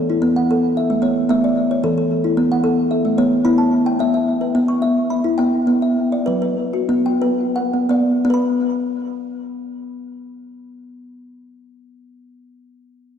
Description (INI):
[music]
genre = world meditative, meditative tuned percussion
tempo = 83-112 BPM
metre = 4/4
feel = straight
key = B minor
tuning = A4 = 439 Hz
[part]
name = kalimba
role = solo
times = 0.0-12.5 s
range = E3 to C#6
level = -16 LUFS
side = equal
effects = diffuse ambient delay
[sound]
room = wet concert hall reverb, RT60 2.4 s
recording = dark, warm production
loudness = -15 LUFS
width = side -8 dB against mid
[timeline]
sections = 0.0-8.3 A section; 8.3-13.2 B section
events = slowing down 3.5-8.3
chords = 0.0 A; 3.5 Em/B; 5.7 Bm; 8.3 N.C.